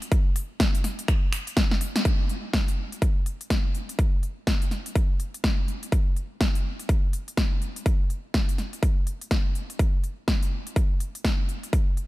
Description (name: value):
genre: house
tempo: 124 BPM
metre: 4/4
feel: swing 61% on 16ths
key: none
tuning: none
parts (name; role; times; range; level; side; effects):
- big-room dance drum kit; drums; 0.0-12.1 s; finger snaps, hi-hat, snare drum; -29 LUFS; equal; overdrive, studio reverb
- electronic kick drum; drums; 0.1-11.8 s; none; -23 LUFS; equal; overdrive, studio reverb
room: little or no reverb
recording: none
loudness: -23 LUFS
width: side -18 dB against mid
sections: 0.0-2.1 A section; 2.1-12.1 B section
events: drum fill 1.7-2.1; band accent 1.9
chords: none